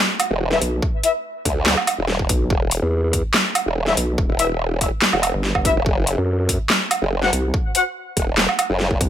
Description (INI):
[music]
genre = heavy wobble dubstep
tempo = 143 BPM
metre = 4/4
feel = half-time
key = E minor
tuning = A4 = 435 Hz
[part]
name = dubstep drum kit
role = drums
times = 0.2-9.1 s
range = handclaps, hi-hat, snare drum, woodblock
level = -19 LUFS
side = right 1 dB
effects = none
[part]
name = formant-sweep wobble bass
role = bass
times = 0.3-9.0 s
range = E1 to D2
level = -20 LUFS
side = equal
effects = chorus, overdrive
[part]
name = mellow brass ensemble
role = stabs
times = 0.5-1.1, 3.9-7.8 s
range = E4 to F#5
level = -23 LUFS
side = left 4 dB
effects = tape echo
[part]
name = vowel-sweep wobble bass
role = bass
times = 0.6-9.1 s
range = E1 to F#2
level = -20 LUFS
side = equal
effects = chorus, overdrive
[part]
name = electronic kick drum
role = drums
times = 0.8-9.1 s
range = none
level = -22 LUFS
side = equal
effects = none
[sound]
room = digital ambience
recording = none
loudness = -17 LUFS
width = side -10 dB against mid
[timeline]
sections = 0.0-9.1 A section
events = none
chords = 0.0 E5; 5.9 N.C.